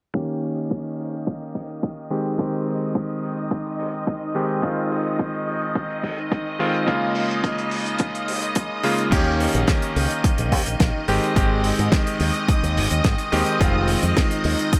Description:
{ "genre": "nu-disco, nu disco", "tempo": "107 BPM", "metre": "4/4", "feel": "straight", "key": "Eb mixolydian", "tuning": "A4 = 440 Hz", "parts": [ { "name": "bright electric grand piano", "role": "accompaniment", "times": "0.1-14.8 s", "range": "Db3 to G4", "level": "-26 LUFS", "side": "equal", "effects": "tape echo" }, { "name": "string machine, full ensemble", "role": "sustained chords", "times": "0.1-14.8 s", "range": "Eb5", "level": "-31 LUFS", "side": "equal", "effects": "ensemble chorus, sidechain pumping" }, { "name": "damped 70s drum kit", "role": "drums", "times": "0.1-14.8 s", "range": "crash cymbal, hi-hat, snare drum", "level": "-31 LUFS", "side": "equal", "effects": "none" }, { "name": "electronic kick drum", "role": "drums", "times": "0.1-14.8 s", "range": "none", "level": "-24 LUFS", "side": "equal", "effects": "overdrive, high-pass filter on kick, high-pass filter on room" }, { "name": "fingered electric bass with an envelope filter", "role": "bass", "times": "9.1-14.8 s", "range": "F1 to Ab2", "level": "-25 LUFS", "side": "equal", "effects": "tube saturation, sidechain pumping" } ], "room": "light reverb, small room ambience", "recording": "low-pass filter", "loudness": "-22 LUFS", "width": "mono", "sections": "0.1-9.1 A section; 9.1-14.8 B section", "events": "filter sweep 0.1-9.1", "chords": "0.1 Eb7; 2.1 Abmaj7; 4.6 Fm7; 6.9 Bbm7; 9.1 Eb7; 11.1 Abmaj7; 13.6 Fm7" }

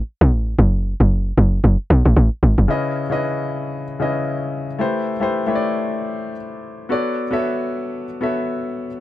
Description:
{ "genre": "amapiano", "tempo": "114 BPM", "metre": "4/4", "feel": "swing 58% on 16ths", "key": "unclear", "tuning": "A4 = 440 Hz", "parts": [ { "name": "tight log drum bass", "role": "bass", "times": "0.0-2.7 s", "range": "F#1 to B1", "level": "-13 LUFS", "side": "equal", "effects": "none" }, { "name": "warm grand piano", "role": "accompaniment", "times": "2.7-9.0 s", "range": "C#3 to E5", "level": "-21 LUFS", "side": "left 2 dB", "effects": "none" } ], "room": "little or no reverb", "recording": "dark, warm production", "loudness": "-17 LUFS", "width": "side -15 dB against mid", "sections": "0.0-2.7 A section; 2.7-9.0 B section", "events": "drop 0.0-2.7", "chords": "0.0 Asus2; 0.6 N.C.; 2.7 C#m9; 4.8 Am9; 6.9 Bm9" }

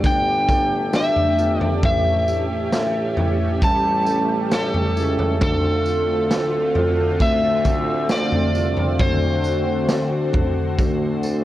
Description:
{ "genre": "dream pop", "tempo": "67 BPM", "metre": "4/4", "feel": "straight", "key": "unclear", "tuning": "A4 = 445 Hz", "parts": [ { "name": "overdriven slide guitar", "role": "melody", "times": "0.0-11.4 s", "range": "A4 to A5", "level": "-22 LUFS", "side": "equal", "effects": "digital delay, shimmer reverb" }, { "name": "warm analog pad", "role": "sustained chords", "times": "0.0-11.4 s", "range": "D3 to G4", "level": "-26 LUFS", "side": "right 1 dB", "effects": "chorus, shimmer reverb" }, { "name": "mellow electric guitar", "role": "arpeggios", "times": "0.0-11.4 s", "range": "A2 to A4", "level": "-27 LUFS", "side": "left 2 dB", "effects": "lush chorus, digital delay, shimmer reverb" }, { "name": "clear tuba", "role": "bass", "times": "0.0-11.4 s", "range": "G1 to D2", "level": "-26 LUFS", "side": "equal", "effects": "none" }, { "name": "raw garage drum kit", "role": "drums", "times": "0.0-11.4 s", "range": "kick drum, snare drum, tambourine, toms", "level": "-22 LUFS", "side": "equal", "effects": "none" } ], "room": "light reverb", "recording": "worn, warbling old tape, cassette tape, warbly pitch drift", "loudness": "-17 LUFS", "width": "side -14 dB against mid", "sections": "0.0-11.4 A section", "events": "none", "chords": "0.0 Gsus2; 1.8 A7; 5.4 Dm7; 9.0 D7" }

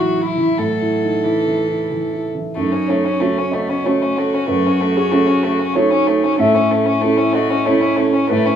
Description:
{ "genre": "neoclassical piano and strings", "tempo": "94 BPM", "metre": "3/4", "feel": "rubato", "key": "F# dorian", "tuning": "A4 = 440 Hz", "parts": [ { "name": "warm violin", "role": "melody", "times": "0.0-8.6 s", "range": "A3 to A4", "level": "-19 LUFS", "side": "left 2 dB", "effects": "none" }, { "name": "rich cello", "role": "second line", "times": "0.0-8.6 s", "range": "E3 to F#4", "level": "-23 LUFS", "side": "right 4 dB", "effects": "none" }, { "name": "dark concert grand piano", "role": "accompaniment", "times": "0.0-8.6 s", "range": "F#2 to E5", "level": "-17 LUFS", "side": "right 1 dB", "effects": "none" } ], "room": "moderate large studio reverb, RT60 1.0 s", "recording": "band playing live in one room, small room ambience", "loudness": "-14 LUFS", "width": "side -8 dB against mid", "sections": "0.0-2.6 A section; 2.6-8.6 B section", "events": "none", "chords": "0.0 A5; 2.6 F#m; 6.4 A" }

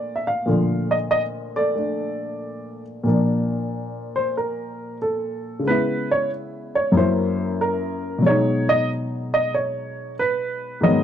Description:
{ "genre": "solo jazz", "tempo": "93 BPM", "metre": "4/4", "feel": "swing 69% on 8ths", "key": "unclear", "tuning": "A4 = 440 Hz", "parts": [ { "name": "warm baby grand piano", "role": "solo", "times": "0.0-11.0 s", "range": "Gb2 to F5", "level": "-20 LUFS", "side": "equal", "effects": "none" } ], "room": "studio reverb", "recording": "dry, close 1970s-style studio recording", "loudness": "-20 LUFS", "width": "side -9 dB against mid", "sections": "0.0-3.1 A section; 3.1-11.0 B section", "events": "grand piano solo 3.1-11.0", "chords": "0.0 Bbmaj7; 5.6 Dbm7; 6.9 Gb7; 8.2 B6" }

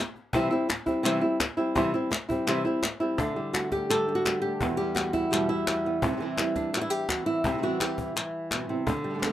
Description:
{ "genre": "flamenco", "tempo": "169 BPM", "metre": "4/4", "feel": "straight", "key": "unclear", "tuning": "A4 = 440 Hz", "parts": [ { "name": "flamenco guitar", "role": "melody", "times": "0.0-9.3 s", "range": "E2 to A4", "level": "-26 LUFS", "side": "equal", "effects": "none" }, { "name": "cajon", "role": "percussion", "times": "0.2-9.3 s", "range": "none", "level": "-36 LUFS", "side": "left 2 dB", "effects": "none" }, { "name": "palmas hand claps", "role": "percussion", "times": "0.3-9.3 s", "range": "none", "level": "-30 LUFS", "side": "left 2 dB", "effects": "none" }, { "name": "flamenco guitar", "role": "stabs", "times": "3.2-9.3 s", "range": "E2 to G4", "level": "-34 LUFS", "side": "right 5 dB", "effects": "none" } ], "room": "moderate small room ambience, RT60 0.5 s", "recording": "rough home demo mix", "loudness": "-25 LUFS", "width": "side -12 dB against mid", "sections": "0.0-3.2 A section; 3.2-9.3 B section", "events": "none", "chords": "0.3 C; 3.2 Dsus4; 4.6 Em; 6.0 C" }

